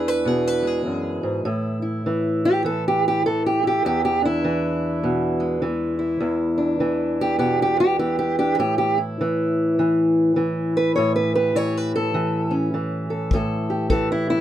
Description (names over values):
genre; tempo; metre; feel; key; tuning
acoustic country blues, solo or duo; 101 BPM; 4/4; swing 62% on 8ths; unclear; A4 = 439 Hz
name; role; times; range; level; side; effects
fingerpicked steel-string acoustic guitar; melody; 0.0-14.4 s; E2 to C#5; -19 LUFS; equal; none
kick drum; drums; 13.3-14.1 s; none; -23 LUFS; left 2 dB; none
room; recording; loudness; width
light reverb; none; -19 LUFS; side -12 dB against mid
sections
0.0-14.4 A section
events
steel-string acoustic guitar solo 0.0-14.4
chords
0.0 E7; 1.5 A5; 3.8 E7; 8.6 A7